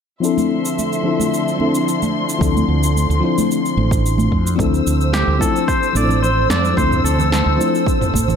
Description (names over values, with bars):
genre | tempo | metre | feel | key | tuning
sunset chillout | 110 BPM | 4/4 | straight | D minor | A4 = 440 Hz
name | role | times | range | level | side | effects
mellow FM electric piano | accompaniment | 0.2-8.4 s | F3 to C5 | -20 LUFS | moving between left 6 dB and equal | chorus, auto-pan, low-pass filter, tape echo
dark chamber string section | sustained chords | 0.2-8.4 s | D3 to E6 | -23 LUFS | left 1 dB | none
deep house drum kit | drums | 0.2-8.4 s | cabasa, snare drum, toms | -24 LUFS | right 2 dB | overdrive
congas | percussion | 0.4-8.4 s | none | -25 LUFS | right 3 dB | none
mellow fretless electric bass | bass | 2.4-8.4 s | A1 to F2 | -18 LUFS | right 1 dB | none
electronic kick drum | drums | 2.4-8.2 s | none | -21 LUFS | right 1 dB | overdrive
pedal steel guitar | melody | 5.1-7.8 s | G4 to D5 | -20 LUFS | left 1 dB | analog delay
room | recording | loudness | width
moderate plate reverb, RT60 2.5 s | dreamy mix soaked in reverb | -14 LUFS | side -7 dB against mid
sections
0.2-4.6 A section; 4.6-8.4 B section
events
filter sweep on FM electric piano 0.2-4.6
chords
0.2 Dm9